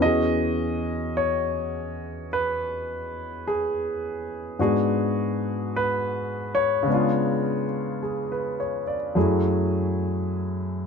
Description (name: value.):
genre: jazz ballad.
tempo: 52 BPM.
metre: 4/4.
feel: swing 68% on 8ths.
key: E major.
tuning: A4 = 441 Hz.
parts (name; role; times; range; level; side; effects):
warm concert grand piano; solo; 0.0-10.9 s; E2 to D#5; -23 LUFS; left 1 dB; none.
room: little or no reverb.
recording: close, detailed microphones.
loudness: -23 LUFS.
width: side -6 dB against mid.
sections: 0.0-10.9 A section.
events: none.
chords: 0.0 E69; 4.6 G#m7b5; 6.9 C#7b9; 9.2 F#m9.